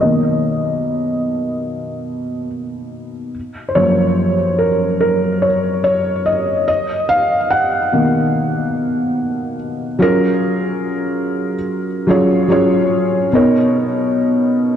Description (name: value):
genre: hip hop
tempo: 72 BPM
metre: 4/4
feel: swing 55% on 16ths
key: F# major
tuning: A4 = 441 Hz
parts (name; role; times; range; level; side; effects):
- felt-muted upright piano; solo; 0.0-14.8 s; F#2 to F#5; -14 LUFS; equal; cassette tape, low-pass filter, ping-pong delay
room: wet church reverb, RT60 3.4 s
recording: dreamy mix soaked in reverb, cassette tape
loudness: -14 LUFS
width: side -9 dB against mid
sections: 0.0-10.0 A section; 10.0-14.8 B section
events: felt piano solo 0.0-10.0; filter sweep on felt piano 0.0-10.0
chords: 0.0 Bmaj7; 3.3 F#maj7; 6.7 Bmaj7; 10.0 F#maj9; 13.3 Bmaj7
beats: | 0.01 0.85 1.68 2.51 | 3.35 4.18 5.01 5.85 | 6.68 7.51 8.35 9.18 | 10.01 10.85 11.68 12.51 | 13.35 14.18